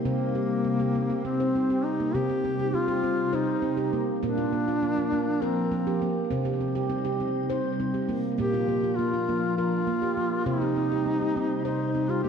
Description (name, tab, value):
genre	world meditative, meditative tuned percussion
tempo	202 BPM (eighths)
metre	7/8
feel	straight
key	C minor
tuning	A4 = 442 Hz
part	mellow duduk	melody	0.0-12.3 s	Bb3 to G4	-27 LUFS	left 2 dB	none
part	soft additive organ-like pad	sustained chords	0.0-12.3 s	C3 to Eb4	-32 LUFS	equal	ensemble chorus, built-in reverb
part	handpan	arpeggios	0.0-12.3 s	Bb2 to C5	-28 LUFS	right 2 dB	ping-pong delay
room	wet lush hall reverb, RT60 1.7 s, studio reverb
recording	dark, warm production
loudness	-24 LUFS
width	side -7 dB against mid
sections	0.0-2.1 A section; 2.1-12.3 B section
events	none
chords	0.0 Cm; 4.2 Bb; 6.3 Cm; 8.4 Bb; 10.5 Cm